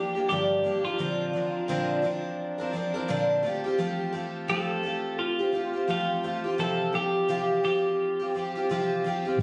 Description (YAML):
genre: acoustic pop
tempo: 86 BPM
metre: 4/4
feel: swing 60% on 16ths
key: unclear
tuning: A4 = 439 Hz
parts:
  - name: twelve-string electric guitar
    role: melody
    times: 0.0-9.0 s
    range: F4 to A4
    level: -31 LUFS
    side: equal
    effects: plate reverb
  - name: picked twelve-string acoustic guitar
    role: accompaniment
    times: 0.0-9.4 s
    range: G2 to Bb4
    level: -30 LUFS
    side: equal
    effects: none
  - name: vintage muted fingered electric bass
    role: bass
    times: 9.4 s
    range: G1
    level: -27 LUFS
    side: equal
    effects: none
room: moderate studio reverb, RT60 0.9 s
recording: recorded on a phone in the room, studio reverb, compression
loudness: -28 LUFS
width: mono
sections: 0.0-9.4 A section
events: none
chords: 0.0 Gm7; 1.0 Bbadd9; 3.4 Fadd9; 6.6 Csus4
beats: 0.30 | 1.00 1.69 2.39 3.09 | 3.79 4.49 5.19 5.89 | 6.59 7.29 7.98 8.68 | 9.38